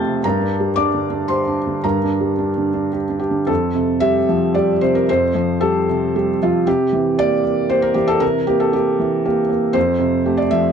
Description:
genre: neoclassical minimalist piano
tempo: 115 BPM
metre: 3/4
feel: rubato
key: F major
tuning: A4 = 440 Hz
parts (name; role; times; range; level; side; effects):
- felt-muted upright piano; solo; 0.0-10.7 s; F2 to A6; -15 LUFS; equal; none
room: moderate small room reverb, RT60 0.6 s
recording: dark, warm production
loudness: -15 LUFS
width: side -7 dB against mid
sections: 0.0-3.5 A section; 3.5-10.7 B section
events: none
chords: 0.2 Gm; 3.5 Fadd9; 6.7 C7; 9.8 Fadd9

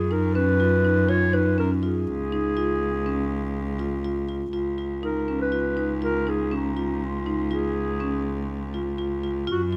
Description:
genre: contemporary instrumental, chamber music in an uneven meter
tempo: 122 BPM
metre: 5/4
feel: straight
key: Db mixolydian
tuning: A4 = 440 Hz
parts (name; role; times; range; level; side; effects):
- dark clarinet; melody; 0.0-9.6 s; Eb4 to Db5; -29 LUFS; equal; none
- rich cello; bass; 0.0-9.8 s; Db2 to Gb2; -29 LUFS; equal; none
- marimba with medium mallets; arpeggios; 0.1-9.8 s; Db4 to F4; -29 LUFS; equal; none
room: light reverb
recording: close, detailed microphones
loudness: -25 LUFS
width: mono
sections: 0.0-4.5 A section; 4.5-9.8 A section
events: none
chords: 0.0 Gb5; 2.1 Db

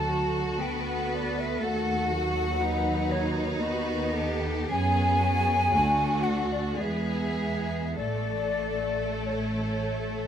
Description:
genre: classical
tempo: 47-62 BPM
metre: 3/4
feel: rubato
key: A major from 4.7 s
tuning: A4 = 437 Hz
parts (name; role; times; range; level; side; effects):
- rich chamber violin section; melody; 0.0-10.3 s; F#4 to B4; -38 LUFS; left 4 dB; none
- clear chamber violin section; second line; 0.0-10.3 s; A3 to F#4; -35 LUFS; left 1 dB; none
- hollow small flute group; second line; 0.0-10.3 s; C#5 to A5; -29 LUFS; left 2 dB; none
- rich chamber viola section; accompaniment; 0.0-10.3 s; F#3 to B3; -33 LUFS; right 1 dB; none
- rich chamber cello section; bass; 0.0-10.3 s; D#4 to B4; -35 LUFS; right 2 dB; none
- rich chamber double bass section; bass; 0.0-10.3 s; A1 to F#2; -31 LUFS; right 2 dB; none
room: moderate scoring stage reverb, RT60 1.7 s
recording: none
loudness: -25 LUFS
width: side -9 dB against mid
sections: 0.0-10.3 A section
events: none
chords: 0.0 D; 1.6 B7/D#; 4.7 F#5; 5.7 D; 6.8 E; 8.0 A

